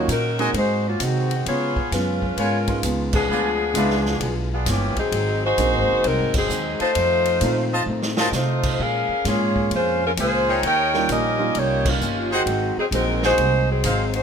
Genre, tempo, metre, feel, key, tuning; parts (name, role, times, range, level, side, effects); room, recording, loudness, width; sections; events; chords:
jazz, big band swing; 131 BPM; 4/4; swing 66% on 8ths; Ab mixolydian; A4 = 441 Hz
warm saxophone section; melody; 0.0-14.2 s; Eb3 to G5; -21 LUFS; left 1 dB
warm concert grand piano; accompaniment; 0.0-13.6 s; F3 to Ab4; -28 LUFS; right 4 dB
upright bass; bass; 0.0-14.2 s; Gb1 to Db3; -25 LUFS; right 1 dB
picked acoustic archtop guitar; accompaniment; 0.1-14.2 s; F2 to G4; -31 LUFS; left 5 dB
swinging big-band drum kit; drums; 0.1-14.2 s; crash cymbal, hi-hat, kick drum, ride cymbal, snare drum; -29 LUFS; equal
clear trumpet section; stabs; 0.4-4.0, 6.8-14.0 s; Eb4 to A5; -26 LUFS; equal
light reverb; minimal, uncompressed stereo recording; -18 LUFS; side -7 dB against mid
0.0-14.2 A section
band accent 3.1, 6.3, 11.8; drum fill 7.9-8.3
0.0 Ebm7; 0.6 Ab7; 1.5 Db7; 3.3 Ddim7; 5.1 Ab7; 7.0 F7; 8.8 Bbm7; 10.6 Eb7; 12.5 Ab7